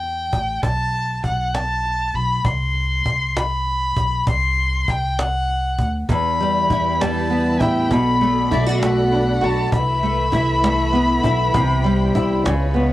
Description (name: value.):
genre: six-eight pop ballad.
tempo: 66 BPM (dotted quarters).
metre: 6/8.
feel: straight.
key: E minor.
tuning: A4 = 440 Hz.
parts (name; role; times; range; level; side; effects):
rich violin; melody; 0.0-12.7 s; D5 to C6; -21 LUFS; left 2 dB; cassette tape.
upright bass; bass; 0.0-12.9 s; A1 to E2; -23 LUFS; equal; none.
cajon; drums; 0.0-12.8 s; none; -23 LUFS; equal; cassette tape.
nylon-string guitar; accompaniment; 6.1-12.9 s; E2 to F#4; -19 LUFS; equal; double-tracked left and right, cassette tape, plate reverb.
warm studio string section; sustained chords; 6.1-12.9 s; C#3 to B5; -27 LUFS; equal; cassette tape.
room: light reverb.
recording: home recording on cassette.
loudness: -17 LUFS.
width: side -15 dB against mid.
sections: 0.0-12.9 A section.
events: none.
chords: 0.0 Em; 0.6 F#madd11/B (rootless); 2.5 N.C.; 4.3 Csus2; 6.1 Em; 7.9 Bm7; 9.7 Amadd9/C; 11.5 C.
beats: | 0.63 1.54 | 2.45 3.36 | 4.27 5.18 | 6.09 7.00 | 7.91 8.82 | 9.73 10.63 | 11.54 12.45.